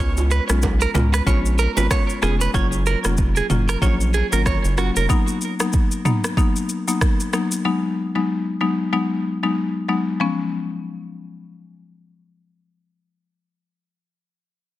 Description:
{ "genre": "afrobeats", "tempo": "94 BPM", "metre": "4/4", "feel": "swing 58% on 16ths", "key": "Db mixolydian", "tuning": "A4 = 438 Hz", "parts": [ { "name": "buzzing marimba with medium mallets", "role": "accompaniment", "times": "0.0-13.8 s", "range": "F3 to F4", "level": "-22 LUFS", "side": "left 3 dB", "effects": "none" }, { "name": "direct-recorded clean electric guitar", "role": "riff", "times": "0.0-5.1 s", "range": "Gb4 to Db5", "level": "-24 LUFS", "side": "right 6 dB", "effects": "spring reverb, digital delay" }, { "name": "round analog bass", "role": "bass", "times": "0.0-5.1 s", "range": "F1 to Db2", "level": "-20 LUFS", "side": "equal", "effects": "none" }, { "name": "deep house drum kit", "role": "drums", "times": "0.2-7.6 s", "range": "kick drum, rim click, shaker, toms", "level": "-21 LUFS", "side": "equal", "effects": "soft clipping on snare" }, { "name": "bongos and congas", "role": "percussion", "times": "0.2-2.4 s", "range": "none", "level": "-31 LUFS", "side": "right 5 dB", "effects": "none" } ], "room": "little or no reverb", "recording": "dense, heavily limited modern master", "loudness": "-18 LUFS", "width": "side -15 dB against mid", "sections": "0.0-10.2 A section; 10.2-12.8 B section", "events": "none", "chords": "0.0 Db7; 2.5 Gbmaj7; 5.1 Cbmaj7/Gb; 7.7 Abm7; 10.2 Db7", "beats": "0.63 1.27 1.91 | 2.54 3.18 3.82 4.46 | 5.10 5.74 6.37 7.01 | 7.65 8.29 8.93 9.57 | 10.20 10.84 11.48 12.12" }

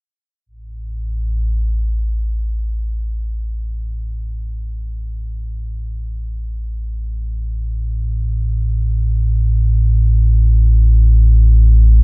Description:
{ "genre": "dark ambient drone", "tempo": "free time", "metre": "none", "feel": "none", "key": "unclear", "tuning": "A4 = 440 Hz", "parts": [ { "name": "deep rumbling drone", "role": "solo", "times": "0.7-12.0 s", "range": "A1 to A2", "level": "-15 LUFS", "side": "equal", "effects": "built-in reverb, lush chorus" } ], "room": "little or no reverb", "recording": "none", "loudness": "-15 LUFS", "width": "side -26 dB against mid", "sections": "0.5-12.0 A section", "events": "none", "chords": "none", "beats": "free time" }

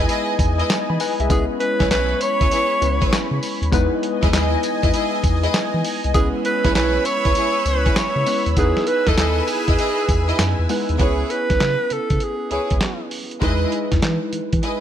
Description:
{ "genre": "R&B, new jack swing", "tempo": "99 BPM", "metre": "4/4", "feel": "swing 66% on 16ths", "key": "C# minor", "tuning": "A4 = 440 Hz", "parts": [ { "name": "warm analog keys", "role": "accompaniment", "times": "0.0-14.8 s", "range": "G#3 to B5", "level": "-25 LUFS", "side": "left 1 dB", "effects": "chorus" }, { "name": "lush unison pad", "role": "sustained chords", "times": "0.0-11.0 s", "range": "B4 to E6", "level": "-27 LUFS", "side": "equal", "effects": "chorus, phaser" }, { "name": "rich studio string section", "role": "stabs", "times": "0.0-14.8 s", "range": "E4 to D#5", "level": "-26 LUFS", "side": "equal", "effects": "none" }, { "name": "round analog bass", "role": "bass", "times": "0.0-14.6 s", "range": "B1 to E3", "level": "-22 LUFS", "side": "equal", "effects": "none" }, { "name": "dusty soul sampler-style drum kit", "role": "drums", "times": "0.1-14.8 s", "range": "handclaps, hi-hat, kick drum, snare drum, tambourine", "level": "-22 LUFS", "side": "equal", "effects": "none" }, { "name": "breathy alto saxophone", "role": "melody", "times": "1.3-13.1 s", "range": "G#4 to C#5", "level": "-22 LUFS", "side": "right 1 dB", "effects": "none" } ], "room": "light reverb", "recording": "none", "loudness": "-17 LUFS", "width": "side -10 dB against mid", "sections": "0.0-11.0 A section; 11.0-14.8 B section", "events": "none", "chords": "0.0 Emaj7; 1.3 C#m7; 3.7 Emaj7; 6.1 C#m7; 8.6 Emaj7; 11.0 C#m7; 13.4 Emaj7", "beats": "0.09 0.69 | 1.30 1.90 2.51 3.12 | 3.72 4.33 4.93 5.54 | 6.15 6.75 7.36 7.96 | 8.57 9.18 9.78 10.39 | 10.99 11.60 12.21 12.81 | 13.42 14.03 14.63" }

